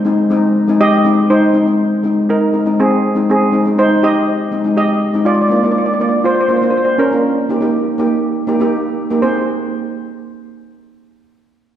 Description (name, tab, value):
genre	calypso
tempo	121 BPM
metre	4/4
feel	straight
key	Ab major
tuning	A4 = 440 Hz
part	steel pan	melody	0.0-9.4 s	C4 to Eb5	-15 LUFS	right 1 dB	slapback echo
part	steel pan	accompaniment	0.0-9.5 s	Ab3 to Ab4	-14 LUFS	equal	none
room	wet concert hall reverb, RT60 2.1 s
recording	heard from further back in the room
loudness	-12 LUFS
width	side -10 dB against mid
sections	0.0-1.3 A section; 1.3-9.2 B section; 9.2-11.2 C section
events	none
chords	0.0 Abmaj7; 5.3 Bb; 7.2 Eb7/Bb; 9.2 Ab